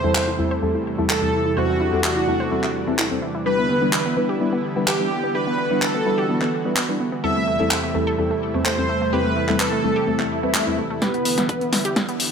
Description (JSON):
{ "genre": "progressive house", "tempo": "127 BPM", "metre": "4/4", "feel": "straight", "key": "E minor", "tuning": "A4 = 440 Hz", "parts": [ { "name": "soft supersaw", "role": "melody", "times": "0.0-11.6 s", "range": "B3 to E5", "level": "-24 LUFS", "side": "right 1 dB", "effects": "sidechain pumping, low-pass filter, digital delay" }, { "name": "lush unison pad", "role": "sustained chords", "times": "0.0-12.3 s", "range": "E2 to F#4", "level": "-27 LUFS", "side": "right 1 dB", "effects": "chorus, sidechain pumping" }, { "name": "wide unison pluck", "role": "arpeggios", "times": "0.0-12.2 s", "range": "A3 to E5", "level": "-27 LUFS", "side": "equal", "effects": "cassette tape, sidechain pumping, ping-pong delay" }, { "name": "deep mellow chord stab", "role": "stabs", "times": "0.0-12.1 s", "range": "E2 to B4", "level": "-24 LUFS", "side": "left 2 dB", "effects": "chorus, phaser, sidechain pumping, ping-pong delay" }, { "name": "deep house drum kit", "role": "drums", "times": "0.1-12.3 s", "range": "handclaps, hi-hat, snare drum", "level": "-23 LUFS", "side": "equal", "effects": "overdrive, high-pass filter on snare, sidechain pumping on hats, high-pass filter on hats, high-pass filter on room" }, { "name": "swell and riser", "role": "sound effects", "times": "10.3-12.3 s", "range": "none", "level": "-30 LUFS", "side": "left 1 dB", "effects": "none" }, { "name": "electronic kick drum", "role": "drums", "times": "11.0-12.1 s", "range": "none", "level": "-28 LUFS", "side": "equal", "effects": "high-pass filter on kick" } ], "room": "moderate digital room reverb, RT60 1.1 s", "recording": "none", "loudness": "-18 LUFS", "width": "side -6 dB against mid", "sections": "0.0-11.0 A section; 11.0-12.3 B section", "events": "swell 10.3-11.0; build-up 11.0-12.3; drum fill 11.0-12.3", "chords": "0.0 Am7/E; 3.5 Em7; 7.2 Am7/E; 11.0 Em7" }